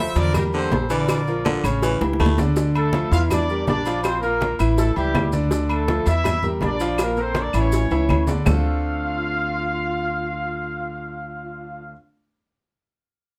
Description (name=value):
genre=latin, salsa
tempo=163 BPM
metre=4/4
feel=straight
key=D minor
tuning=A4 = 440 Hz
part: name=bright trumpet section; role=melody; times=0.0-1.7 s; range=G4 to E5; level=-30 LUFS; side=equal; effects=none
part: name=bright concert grand piano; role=accompaniment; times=0.0-11.9 s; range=C#3 to F5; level=-28 LUFS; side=equal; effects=none
part: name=upright bass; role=bass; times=0.0-11.9 s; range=A1 to E2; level=-26 LUFS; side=equal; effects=none
part: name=raspy baritone saxophone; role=second line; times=0.2-2.4 s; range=D3 to A3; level=-27 LUFS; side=equal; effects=none
part: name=agogo bells and timbales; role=percussion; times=0.2-8.6 s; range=none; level=-32 LUFS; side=equal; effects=none
part: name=congas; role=percussion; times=0.2-8.6 s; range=none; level=-29 LUFS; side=equal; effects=none
part: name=cowbell and bongos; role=percussion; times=0.2-8.6 s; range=none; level=-30 LUFS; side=equal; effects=none
part: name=maracas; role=percussion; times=0.2-8.6 s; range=none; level=-43 LUFS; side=equal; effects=none
part: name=claves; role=percussion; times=0.3-8.6 s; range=none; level=-36 LUFS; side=equal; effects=none
part: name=warm horn section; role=melody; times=2.8-11.9 s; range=G3 to F5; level=-28 LUFS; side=equal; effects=none
room=light reverb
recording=none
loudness=-21 LUFS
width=mono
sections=0.0-2.6 A section; 2.6-8.5 B section; 8.5-11.4 C section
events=drum fill 2.0-2.6, 7.9-8.5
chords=0.4 Em7b5; 1.1 Bbmaj7; 1.8 A7; 2.6 Dm; 3.3 Em7b5; 4.0 Bb5; 4.8 A7; 5.5 Dm; 6.3 Em7b5; 7.0 Bb5; 7.7 A; 8.5 Dm7